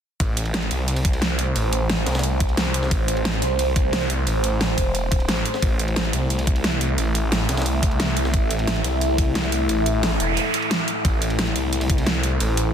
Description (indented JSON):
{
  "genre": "dark technical drum and bass",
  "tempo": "177 BPM",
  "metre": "4/4",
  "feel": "straight",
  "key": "A minor",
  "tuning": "A4 = 440 Hz",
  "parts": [
    { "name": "deep dark ambient pad", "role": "sustained chords", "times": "0.9-12.7 s", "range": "A3 to E5", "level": "-26 LUFS", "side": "right 1 dB", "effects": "chorus, built-in reverb, sidechain pumping" },
    { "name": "snarling distorted saw bass", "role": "bass", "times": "0.2-12.7 s", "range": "E1 to C2", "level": "-23 LUFS", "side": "equal", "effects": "distortion, overdrive, sidechain pumping" },
    { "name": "breakbeat sampler-style drum kit", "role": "drums", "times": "0.2-12.7 s", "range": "hi-hat, ride cymbal, snare drum", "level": "-33 LUFS", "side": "right 1 dB", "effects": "high-pass filter on cymbals, high-pass filter on snare, high-pass filter on hats" },
    { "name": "dubstep drum kit", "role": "drums", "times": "0.2-12.6 s", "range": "hi-hat, snare drum", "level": "-25 LUFS", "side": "right 1 dB", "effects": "overdrive" },
    { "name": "electronic kick drum", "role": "drums", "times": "0.2-12.0 s", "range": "none", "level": "-21 LUFS", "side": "equal", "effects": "overdrive" },
    { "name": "noise sweep", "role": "sound effects", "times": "10.0-11.0 s", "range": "none", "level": "-27 LUFS", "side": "right 4 dB", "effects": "none" }
  ],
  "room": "light reverb",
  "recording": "dense, heavily limited modern master",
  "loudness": "-19 LUFS",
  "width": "side -8 dB against mid",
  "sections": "0.2-12.7 A section",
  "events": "noise sweep 10.0-11.0",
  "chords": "0.2 Am",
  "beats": "| 0.20 0.54 0.88 1.22 | 1.56 1.90 2.23 2.57 | 2.91 3.25 3.59 3.93 | 4.27 4.61 4.95 5.29 | 5.62 5.96 6.30 6.64 | 6.98 7.32 7.66 8.00 | 8.34 8.68 9.01 9.35 | 9.69 10.03 10.37 10.71 | 11.05 11.39 11.73 12.06 | 12.40"
}